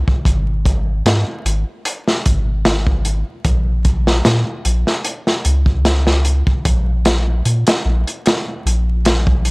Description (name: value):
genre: trip hop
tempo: 75 BPM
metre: 4/4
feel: swing 54% on 16ths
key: Bb minor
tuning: A4 = 440 Hz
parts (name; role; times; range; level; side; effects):
- soft dub sub bass; bass; 0.0-9.5 s; Ab1 to Bb2; -16 LUFS; equal; none
- crunchy breakbeat drum kit; drums; 0.1-9.5 s; hi-hat, kick drum, snare drum; -16 LUFS; equal; none
room: little or no reverb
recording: dry, gritty hardware recording, vinyl crackle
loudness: -14 LUFS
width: side -33 dB against mid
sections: 0.0-9.5 A section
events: none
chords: none